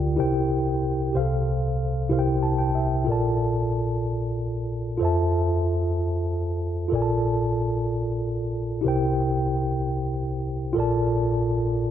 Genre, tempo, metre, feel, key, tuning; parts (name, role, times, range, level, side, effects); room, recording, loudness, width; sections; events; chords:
gospel; 62 BPM (dotted quarters); 6/8; straight; A4 = 438 Hz
mellow tine electric piano; solo; 0.0-11.9 s; Bb1 to A5; -22 LUFS; equal; fast stereo tremolo, tape echo
moderate plate reverb, RT60 2.6 s; dark, warm production; -22 LUFS; side -10 dB against mid
0.0-10.8 A section; 10.8-11.9 B section
tine electric piano fill 2.1-3.1
0.2 C7; 1.1 F/C; 2.1 C7; 3.1 Bbmaj7; 5.0 Fmaj7; 6.9 Bbmaj7; 8.8 C7; 10.8 Bbmaj7